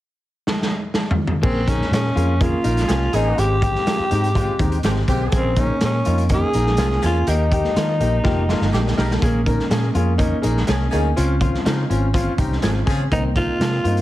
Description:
uptempo 1960s-style soul; 123 BPM; 4/4; straight; Bb dorian; A4 = 439 Hz
raw garage drum kit; drums; 0.5-14.0 s; crash cymbal, hi-hat, kick drum, snare drum, toms; -22 LUFS; equal
growling tenor saxophone; melody; 1.4-9.0, 13.1-14.0 s; C4 to Ab4; -22 LUFS; equal
warm grand piano; accompaniment; 1.4-14.0 s; Ab3 to Bb4; -25 LUFS; equal
electric guitar through a small old amp; riff; 1.4-14.0 s; Bb3 to Ab4; -28 LUFS; left 4 dB
vintage muted fingered electric bass; bass; 1.4-14.0 s; F1 to Eb3; -21 LUFS; equal
clear horn section; second line; 2.9-13.0 s; Db3 to Bb4; -30 LUFS; right 2 dB
light reverb, small room reverb; heavily compressed radio sound, multiband compression; -17 LUFS; side -15 dB against mid
0.0-1.4 A section; 1.4-14.0 B section
drum fill 0.5-1.4, 8.2-9.2
0.0 N.C.; 1.4 Bbm7; 3.4 Abmaj7; 5.3 Bbm7; 7.3 Eb; 9.2 Bbm7; 11.2 Dbmaj7; 13.1 Cm7

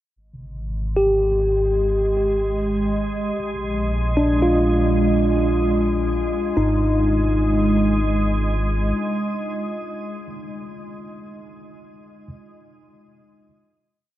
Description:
ambient; 75 BPM; 4/4; straight; A4 = 441 Hz
round analog bass; bass; 0.2-8.9 s; Ab1 to Bb1; -23 LUFS; equal
organ-like drone; drone; 1.8-10.3 s; Ab3; -24 LUFS; right 1 dB; ensemble chorus, built-in reverb
tine electric piano; arpeggios; 1.0-12.3 s; D4 to G4; -22 LUFS; equal; tape echo, shimmer reverb
wet huge ambient reverb, RT60 7.9 s; worn, warbling old tape, cassette tape, warbly pitch drift; -18 LUFS; side -14 dB against mid
0.2-6.6 A section; 6.6-9.8 final chord
fade-in on synth drone 0.2-6.6
0.2 N.C.; 3.4 Bb7; 6.6 Ab5

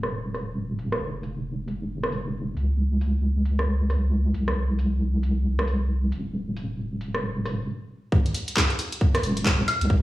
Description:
UK garage, two-step garage; 135 BPM; 4/4; swing 60% on 16ths; A4 = 441 Hz
deep soft wobble bass; bass; 0.0-10.0 s; Eb1 to Db2; -24 LUFS; equal; chorus
garage drum kit; drums; 0.0-9.9 s; handclaps, hi-hat, rim click, woodblock; -27 LUFS; equal; low-pass filter on hats, low-pass filter on snare, low-pass filter on perc, low-pass filter on room
electronic kick drum; drums; 8.1-10.0 s; -21 LUFS; equal
light reverb; played on a big sound system in a bare room, stone room reverb, small room ambience; -23 LUFS; side -16 dB against mid
0.0-8.1 A section; 8.1-10.0 B section
stop 7.7-8.1; drop 8.1-10.0

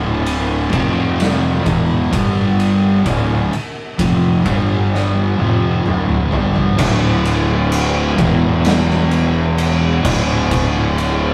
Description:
stoner and doom metal; 64 BPM; 4/4; straight; D minor; A4 = 440 Hz
fuzz guitar; riff; 0.0-11.3 s; D2 to G3; -19 LUFS; equal; distortion
fuzz fingered electric bass; bass; 0.0-11.3 s; D1 to G1; -21 LUFS; equal; overdrive, tube saturation
oversized low-tuned drum kit; drums; 0.3-11.2 s; crash cymbal, kick drum, ride cymbal, snare drum, toms; -22 LUFS; equal
light reverb; rough rehearsal-room recording, warm saturation; -16 LUFS; mono
0.0-6.8 A section; 6.8-11.3 B section
drum fill 4.9-6.8
0.0 D5; 0.7 F5; 1.7 E5; 2.1 G5; 3.1 Dm; 4.5 G5; 5.4 Dm; 6.8 D5; 8.2 E5; 10.0 D5

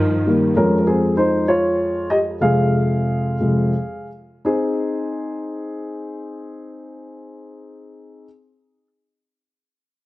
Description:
pop; 55-67 BPM (dotted quarters); 6/8; straight; Ab major; A4 = 440 Hz
dark upright piano; accompaniment; 0.0-8.3 s; F2 to F5; -18 LUFS; equal
warm studio string section; sustained chords; 0.0-0.6 s; G2 to F3; -23 LUFS; right 1 dB
moderate recital hall reverb, RT60 1.6 s, small room ambience; worn, warbling old tape, cassette tape, warbly pitch drift; -17 LUFS; side -18 dB against mid
0.0-4.5 A section; 4.5-8.8 B section
upright piano solo 0.0-4.5; slowing down 0.6-4.5
0.0 Ebadd9; 0.6 Dbadd9/F; 2.4 Fm; 4.5 Ab

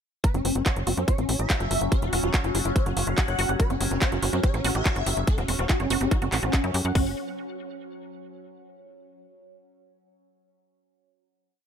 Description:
psychedelic trance; 143 BPM; 4/4; straight; F# phrygian; A4 = 440 Hz
swarming rave lead; melody; 0.2-7.1 s; C#4 to F#5; -30 LUFS; left 1 dB; chorus, phaser, sidechain pumping, ping-pong delay
overtone-sweeping drone; sustained chords; 0.8-7.0 s; F#3 to C#4; -34 LUFS; equal; chorus, built-in reverb, phaser, sidechain pumping
drum and bass drum kit; drums; 0.2-6.9 s; handclaps, hi-hat; -30 LUFS; right 1 dB
garage drum kit; drums; 0.2-7.0 s; hi-hat, kick drum; -23 LUFS; equal
wide unison pluck; riff; 0.3-7.1 s; E4 to F#5; -33 LUFS; moving between left 5 dB and right 6 dB; auto-pan, cassette tape, sidechain pumping, ping-pong delay
tight sequencer bass; bass; 0.3-7.1 s; E1 to F#2; -28 LUFS; equal
little or no reverb; -22 LUFS; side -8 dB against mid
0.2-7.0 groove; 7.0-8.6 final chord
filter sweep on synth arpeggio sound 0.2-7.0
0.2 F#5

